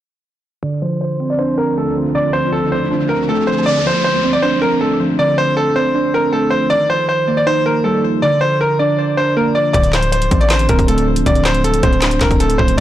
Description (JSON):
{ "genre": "hip hop, trap", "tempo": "158 BPM", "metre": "4/4", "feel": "half-time", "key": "D phrygian", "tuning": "A4 = 438 Hz", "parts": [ { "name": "bright concert grand piano", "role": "melody", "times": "0.6-12.8 s", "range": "A4 to D5", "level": "-16 LUFS", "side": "equal", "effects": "low-pass filter, ping-pong delay" }, { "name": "muted felt-like synth keys", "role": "accompaniment", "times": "0.6-12.8 s", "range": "D3 to D5", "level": "-18 LUFS", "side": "right 2 dB", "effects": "chorus, low-pass filter" }, { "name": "granular cloud pad", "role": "sustained chords", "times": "1.4-3.6 s", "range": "D2 to F4", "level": "-27 LUFS", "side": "left 1 dB", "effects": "built-in reverb, low-pass filter" }, { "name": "riser and downlifter", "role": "sound effects", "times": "1.3-6.7 s", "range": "none", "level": "-26 LUFS", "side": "equal", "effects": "none" }, { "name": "hard-hitting 808-style bass", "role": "bass", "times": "9.7-12.8 s", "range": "D1 to A1", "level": "-17 LUFS", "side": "left 1 dB", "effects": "none" }, { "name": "trap drum kit", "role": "drums", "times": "9.7-12.8 s", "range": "handclaps, hi-hat, kick drum, snare drum", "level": "-17 LUFS", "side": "left 1 dB", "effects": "none" } ], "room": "light reverb", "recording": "blown-out, overdriven recording, overdrive", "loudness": "-13 LUFS", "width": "side -12 dB against mid", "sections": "0.6-3.7 A section; 3.7-12.8 B section", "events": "filter sweep 0.6-3.7; riser 1.3-3.7", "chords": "0.6 Dm7; 6.7 Ebadd9; 8.2 Bb; 9.7 Dm7" }